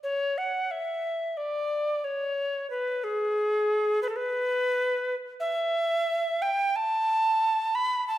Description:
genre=classical, baroque-style fantasia for unaccompanied recorder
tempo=90 BPM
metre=4/4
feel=rubato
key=unclear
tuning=A4 = 441 Hz
part: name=alto recorder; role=solo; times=0.0-8.2 s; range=G#4 to B5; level=-25 LUFS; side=equal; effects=none
room=wet recital hall reverb, RT60 1.7 s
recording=minimal, uncompressed stereo recording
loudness=-25 LUFS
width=side -13 dB against mid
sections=0.0-8.2 A section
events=none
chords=none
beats=| 0.05 0.72 1.39 2.05 | 2.71 3.37 4.03 4.69 | 5.41 6.09 6.75 7.42 | 8.08

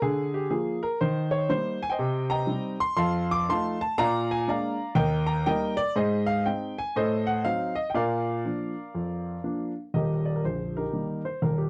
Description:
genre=jazz, stride piano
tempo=121 BPM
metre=4/4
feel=swing 64% on 8ths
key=Eb major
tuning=A4 = 440 Hz
part: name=clear grand piano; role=solo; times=0.0-11.7 s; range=Bb0 to D6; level=-27 LUFS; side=equal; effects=none
room=little or no reverb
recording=dry, close 1970s-style studio recording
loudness=-27 LUFS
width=mono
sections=0.0-9.9 A section; 9.9-11.7 B section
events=none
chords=0.0 Bb/D; 1.0 Eb; 2.0 Cm7; 3.0 F7; 4.0 Bb7; 5.0 Eb; 6.0 Ab; 7.0 Adim7; 7.9 Bb; 9.9 Eb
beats=| 0.02 0.51 1.01 1.50 | 2.00 2.50 2.99 3.48 | 3.98 4.47 4.97 5.46 | 5.96 6.46 6.95 7.45 | 7.94 8.44 8.93 9.43 | 9.93 10.42 10.92 11.42

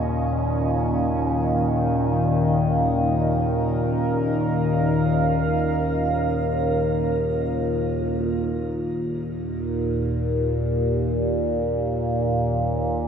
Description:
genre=dark ambient drone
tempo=free time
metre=none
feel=none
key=unclear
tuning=A4 = 441 Hz
part: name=deep dark ambient pad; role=sustained chords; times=0.0-8.1 s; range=Eb3 to F5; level=-25 LUFS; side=left 1 dB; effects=chorus, built-in reverb, shimmer reverb
part: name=overtone-sweeping drone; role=drone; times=0.0-13.1 s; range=Eb2 to Bb2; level=-22 LUFS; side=equal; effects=chorus, built-in reverb
room=wet cathedral reverb, RT60 6.0 s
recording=none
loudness=-20 LUFS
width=side -7 dB against mid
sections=0.0-8.1 A section; 8.1-13.1 B section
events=none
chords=0.0 Bbm/Eb; 8.1 Eb5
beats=free time

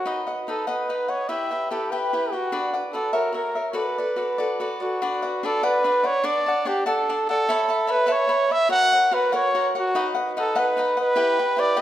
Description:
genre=mexican folk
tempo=97 BPM (dotted quarters)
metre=6/8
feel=rubato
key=B minor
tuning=A4 = 440 Hz
part: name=mellow trumpet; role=melody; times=0.0-11.8 s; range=F#4 to F#5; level=-22 LUFS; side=right 1 dB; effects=none
part: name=cavaquinho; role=accompaniment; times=0.0-11.8 s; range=D4 to B5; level=-25 LUFS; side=left 2 dB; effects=none
room=wet recital hall reverb, RT60 1.8 s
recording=minimal, uncompressed stereo recording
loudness=-20 LUFS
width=side -12 dB against mid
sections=0.0-5.0 A section; 5.0-11.8 A section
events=none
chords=0.0 B; 1.3 Em; 2.5 Bm; 3.1 F#7; 3.8 Bm7; 5.0 Bm; 6.3 D; 7.5 Aadd9; 8.7 F#; 9.9 B; 11.2 Em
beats=| 0.04 0.67 | 1.29 1.91 | 2.52 3.14 | 3.76 4.39 | 5.02 5.64 | 6.26 6.87 | 7.48 8.09 | 8.70 9.32 | 9.94 10.56 | 11.17 11.77

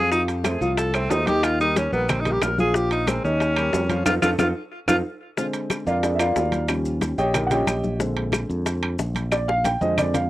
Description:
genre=Afro-Cuban jazz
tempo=183 BPM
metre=4/4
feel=straight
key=Bb mixolydian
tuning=A4 = 442 Hz
part: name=edgy tenor saxophone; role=melody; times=0.0-5.0 s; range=Cb4 to Bb4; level=-23 LUFS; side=equal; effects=cassette tape, tape echo
part: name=warm baby grand piano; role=accompaniment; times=0.0-10.3 s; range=D3 to G5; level=-24 LUFS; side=equal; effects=cassette tape
part: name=modern bright fingered electric bass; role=bass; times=0.0-10.3 s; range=Bb1 to F2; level=-26 LUFS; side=equal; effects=none
part: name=bongos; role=percussion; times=0.1-10.2 s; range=none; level=-29 LUFS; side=left 5 dB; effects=none
part: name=congas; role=percussion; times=0.1-10.3 s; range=none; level=-31 LUFS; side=left 2 dB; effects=none
part: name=maracas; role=percussion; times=0.1-10.3 s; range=none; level=-38 LUFS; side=left 2 dB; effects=none
part: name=timbales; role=percussion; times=0.3-10.3 s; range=none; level=-29 LUFS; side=right 5 dB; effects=none
part: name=claves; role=percussion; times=0.5-10.1 s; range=none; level=-31 LUFS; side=left 2 dB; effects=none
room=moderate booth ambience, RT60 0.2 s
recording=home recording on cassette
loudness=-20 LUFS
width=side -16 dB against mid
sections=0.0-5.4 A section; 5.4-10.3 A section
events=tenor saxophone solo 0.0-5.4; band accent 4.1-5.4; drum fill 4.6-5.4, 9.3-10.3; grand piano solo 5.4-10.3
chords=0.1 F7; 1.4 Eb; 2.8 Bb5; 3.4 Eb7; 4.1 F7; 5.4 Bb7; 6.7 Eb7; 8.0 Bb7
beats=| 0.12 0.45 0.78 1.11 | 1.44 1.76 2.09 2.42 | 2.75 3.08 3.41 3.73 | 4.06 4.39 4.72 5.05 | 5.38 5.70 6.03 6.36 | 6.69 7.02 7.35 7.67 | 8.00 8.33 8.66 8.99 | 9.32 9.65 9.97

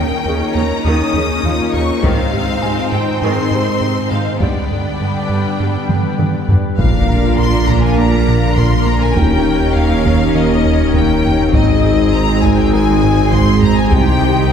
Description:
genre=cinematic, hybrid orchestral and electronic film score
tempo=101 BPM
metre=4/4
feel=straight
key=unclear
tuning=A4 = 440 Hz
part: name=bright symphonic violin section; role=melody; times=0.0-14.5 s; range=Eb5 to Eb6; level=-24 LUFS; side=left 4 dB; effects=none
part: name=rich symphonic violin section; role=second line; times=0.0-14.5 s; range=D4 to C6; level=-24 LUFS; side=left 2 dB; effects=none
part: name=rich symphonic viola section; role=accompaniment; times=0.0-14.5 s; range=C3 to Bb4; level=-21 LUFS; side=right 1 dB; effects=none
part: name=phased analog pad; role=sustained chords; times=0.0-14.5 s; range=D3 to Db5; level=-20 LUFS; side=left 1 dB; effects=phaser, chorus, tremolo
part: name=round analog bass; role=riff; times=0.0-14.4 s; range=C2 to Bb3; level=-20 LUFS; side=right 2 dB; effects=none
part: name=clear symphonic cello section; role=bass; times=0.0-14.5 s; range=Eb2 to C3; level=-22 LUFS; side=right 3 dB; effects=none
part: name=felt-muted upright piano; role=texture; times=0.0-14.5 s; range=F4 to Bb5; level=-29 LUFS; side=left 2 dB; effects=none
part: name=taiko ensemble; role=drums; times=2.0-14.5 s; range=none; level=-20 LUFS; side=equal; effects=none
part: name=dark French horn section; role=sustained chords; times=6.8-14.5 s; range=C4 to F4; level=-22 LUFS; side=left 5 dB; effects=none
part: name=clear symphonic double bass section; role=bass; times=6.8-14.5 s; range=Ab1 to Eb2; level=-22 LUFS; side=right 2 dB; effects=none
part: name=warm sub bass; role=bass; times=6.8-14.5 s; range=Eb1 to C2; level=-20 LUFS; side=equal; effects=none
part: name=warm tuba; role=bass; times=6.8-14.5 s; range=Ab1 to Eb2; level=-21 LUFS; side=right 1 dB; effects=none
part: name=impact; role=sound effects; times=6.8-9.2 s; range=none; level=-22 LUFS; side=left 1 dB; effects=none
room=wet scoring stage reverb, RT60 1.6 s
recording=heard from further back in the room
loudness=-12 LUFS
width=side -8 dB against mid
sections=0.0-6.8 A section; 6.8-14.5 B section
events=drum fill 5.9-6.8; impact 6.8-9.2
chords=0.0 Eb7; 2.0 Ab; 4.4 G; 6.8 Bb; 9.2 Eb7; 11.5 Ab; 13.9 Cm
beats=0.26 0.85 1.44 | 2.04 2.63 3.23 3.82 | 4.42 5.01 5.60 6.20 | 6.79 7.38 7.98 8.57 | 9.17 9.76 10.36 10.95 | 11.54 12.14 12.73 13.33 | 13.92 14.51

